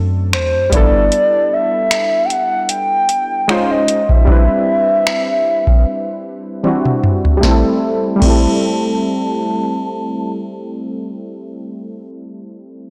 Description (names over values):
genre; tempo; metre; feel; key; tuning
contemporary R&B; 76 BPM; 4/4; swing 54% on 16ths; A dorian; A4 = 444 Hz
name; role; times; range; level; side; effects
warm analog keys; accompaniment; 0.0-12.9 s; F#3 to B#4; -21 LUFS; equal; chorus, low-pass filter
soft 808-style bass; bass; 0.0-1.1 s; G1 to F#2; -20 LUFS; equal; none
hollow clarinet-like synth lead; melody; 0.3-11.3 s; C5 to A5; -19 LUFS; equal; chorus, low-pass filter, delay
booming analog drum machine; drums; 0.3-8.5 s; crash cymbal, finger snaps, hi-hat, kick drum, snare drum, toms; -17 LUFS; equal; soft clipping on snare
room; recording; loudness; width
light reverb, digital ambience; blown-out, overdriven recording, overdrive; -15 LUFS; mono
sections
0.0-7.4 A section; 7.4-10.6 B section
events
filter sweep 0.0-7.4; drum fill 6.6-7.4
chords
0.0 D7; 0.7 G69; 3.5 C#maj9; 4.3 Cmaj9; 7.4 Am7